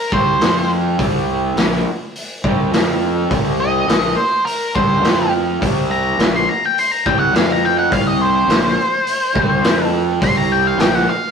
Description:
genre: blues rock power trio and southern rock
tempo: 104 BPM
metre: 4/4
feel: straight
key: unclear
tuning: A4 = 440 Hz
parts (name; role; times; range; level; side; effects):
- octave-fuzz lead guitar; melody; 0.0-11.3 s; Bb4 to C6; -17 LUFS; left 1 dB; distortion
- crunchy overdriven guitar; riff; 0.1-11.1 s; Bb2 to F4; -20 LUFS; right 1 dB; none
- fuzz fingered electric bass; bass; 0.1-11.1 s; Bb1 to F2; -22 LUFS; equal; overdrive
- vintage drum kit; drums; 0.1-11.0 s; hi-hat, kick drum, snare drum; -19 LUFS; equal; none
room: wet stone room reverb, RT60 1.0 s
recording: rough rehearsal-room recording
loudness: -14 LUFS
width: side -6 dB against mid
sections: 0.0-11.3 A section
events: lead electric guitar solo 0.0-11.3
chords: 0.4 F5; 1.0 C5; 2.7 F5; 3.3 Cm; 5.0 F5; 5.6 C5; 7.3 F5; 7.9 C5; 9.7 F5; 10.2 C5

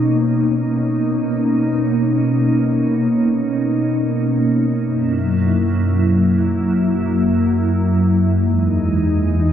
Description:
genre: hip hop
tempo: free time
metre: none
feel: none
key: B major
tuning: A4 = 440 Hz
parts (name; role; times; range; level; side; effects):
- glassy FM pad; solo; 0.0-9.5 s; E2 to E4; -15 LUFS; equal; ensemble chorus, built-in reverb, tape echo
room: light reverb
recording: echo-heavy mix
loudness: -15 LUFS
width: side -9 dB against mid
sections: 0.0-9.5 A section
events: none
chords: 0.0 Bmaj9; 4.8 F#7; 8.4 Emaj7

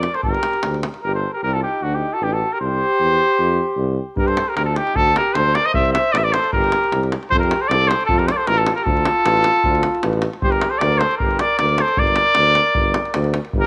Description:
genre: balkan folk, Balkan brass band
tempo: 154 BPM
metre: 2/4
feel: swing 54% on 16ths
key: G minor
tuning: A4 = 440 Hz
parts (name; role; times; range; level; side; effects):
- warm trumpet; melody; 0.0-13.7 s; F#4 to E5; -20 LUFS; equal; none
- mellow flugelhorn; second line; 0.0-13.7 s; D4 to C5; -28 LUFS; equal; none
- warm tuba; bass; 0.0-13.7 s; G1 to G2; -24 LUFS; equal; none
- davul; percussion; 0.0-1.0, 4.2-13.6 s; none; -27 LUFS; equal; none
room: moderate echo chamber reverb, RT60 1.5 s, small room ambience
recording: none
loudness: -18 LUFS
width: mono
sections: 0.0-1.0 A section; 1.0-7.3 B section; 7.3-13.5 C section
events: none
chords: 0.2 Gm; 1.0 Gmadd9; 1.8 D5; 2.6 C; 3.4 F5; 4.2 G5; 5.0 D7b13; 5.7 Amadd11; 6.5 Gm; 7.3 F; 8.9 Dm; 10.4 G5

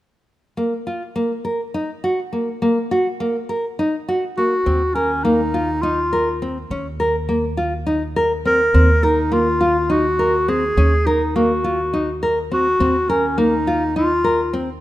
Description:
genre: contemporary instrumental, contemporary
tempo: 206 BPM (eighths)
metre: 7/8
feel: straight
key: Eb dorian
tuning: A4 = 438 Hz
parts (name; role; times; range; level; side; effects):
- nylon-string guitar; arpeggios; 0.6-14.7 s; Bb3 to Bb4; -20 LUFS; equal; none
- breathy clarinet; melody; 4.4-14.6 s; Db4 to Bb4; -18 LUFS; equal; none
- upright bass; bass; 4.7-14.8 s; Eb2; -23 LUFS; right 1 dB; none
room: light reverb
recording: none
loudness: -16 LUFS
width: side -15 dB against mid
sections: 0.6-4.7 A section; 4.7-14.8 B section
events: none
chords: 0.6 N.C.; 2.6 Ebm/Bb (rootless); 4.7 Ebsus2; 6.7 Dbsus2/Eb (rootless); 8.7 Ebm69; 10.8 Ebm; 12.8 Ebsus2

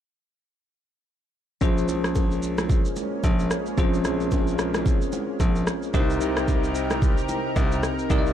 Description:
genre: amapiano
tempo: 111 BPM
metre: 4/4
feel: swing 58% on 16ths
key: Bb dorian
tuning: A4 = 442 Hz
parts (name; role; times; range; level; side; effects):
- bell-like tine electric piano; accompaniment; 1.6-8.3 s; C4 to Eb5; -28 LUFS; equal; fast stereo tremolo
- lush unison pad; sustained chords; 1.6-8.3 s; C3 to Bb4; -31 LUFS; equal; chorus, sidechain pumping
- bright concert grand piano; bass; 1.6-8.3 s; Bb1 to C2; -28 LUFS; left 1 dB; none
- deep house drum kit; drums; 1.6-8.3 s; kick drum, rim click, shaker; -24 LUFS; equal; vintage 12-bit sampler grit
- congas and bongos; percussion; 1.6-8.2 s; none; -35 LUFS; right 4 dB; none
room: digital ambience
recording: dark, warm production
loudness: -21 LUFS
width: side -10 dB against mid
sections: 1.6-8.3 A section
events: none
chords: 1.6 Bbm7; 5.9 Cm7

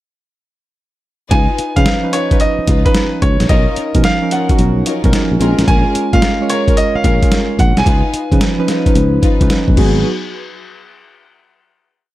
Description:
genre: R&B, new jack swing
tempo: 110 BPM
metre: 4/4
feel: swing 66% on 16ths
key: unclear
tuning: A4 = 440 Hz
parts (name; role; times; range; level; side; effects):
- warm grand piano; melody; 1.3-9.5 s; B4 to G#5; -19 LUFS; right 1 dB; none
- dark studio string section; stabs; 1.3-10.0 s; C#4 to B4; -23 LUFS; left 5 dB; digital delay
- sustaining fretless electric bass; bass; 1.3-10.0 s; G#1 to C#3; -16 LUFS; equal; none
- boom bap sampler-style drum kit; drums; 1.3-9.9 s; crash cymbal, hi-hat, kick drum, snare drum; -14 LUFS; equal; none
- soft electric-piano-like synth keys; accompaniment; 1.8-10.1 s; E#3 to C#5; -17 LUFS; right 2 dB; chorus
room: little or no reverb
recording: none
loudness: -11 LUFS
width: side -15 dB against mid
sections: 1.3-10.0 verse; 10.0-12.1 final hit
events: none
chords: 1.3 C#9; 3.5 Bmaj9#11; 5.4 A#m7; 7.9 C#9; 9.8 G#m7; 10.0 N.C.

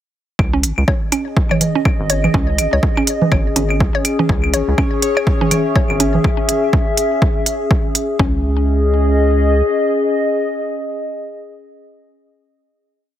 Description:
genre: minimal techno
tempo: 123 BPM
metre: 4/4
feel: swing 59% on 16ths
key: C# minor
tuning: A4 = 439 Hz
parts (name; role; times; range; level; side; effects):
- rubbery square bass; bass; 0.4-9.6 s; G#1 to C#2; -17 LUFS; equal; sidechain pumping
- electronic kick drum; drums; 0.4-8.3 s; none; -16 LUFS; equal; overdrive
- claves and congas; percussion; 0.4-6.2 s; none; -20 LUFS; right 2 dB; overdrive, ping-pong delay
- warbly tape-like pad; texture; 0.8-12.2 s; C#4 to E5; -19 LUFS; left 2 dB; chorus, built-in reverb, sidechain pumping
- mallet-like synth pluck; riff; 0.5-8.4 s; C#4 to C#5; -22 LUFS; right 1 dB; chorus, sidechain pumping, ping-pong delay
- electronic hi-hat; drums; 0.6-8.1 s; none; -19 LUFS; right 2 dB; none
- pulsing gated texture; texture; 4.6-6.3 s; C#5; -29 LUFS; right 2 dB; chorus, built-in reverb, sidechain pumping
room: light reverb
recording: heavily compressed radio sound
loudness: -14 LUFS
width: side -11 dB against mid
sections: 0.4-8.2 groove; 8.2-12.1 final chord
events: none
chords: 0.4 C#5

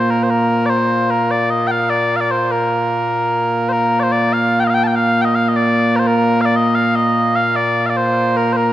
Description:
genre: scottish traditional, Scottish pipe music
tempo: 99 BPM (dotted quarters)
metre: 6/8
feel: straight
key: Bb major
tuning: A4 = 440 Hz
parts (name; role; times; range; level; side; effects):
- mellow small bagpipes; solo; 0.0-8.7 s; Bb2 to A5; -14 LUFS; equal; none
room: moderate concert hall reverb, RT60 1.8 s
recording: none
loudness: -14 LUFS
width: side -13 dB against mid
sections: 0.0-3.7 A section; 3.7-8.7 B section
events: none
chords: none

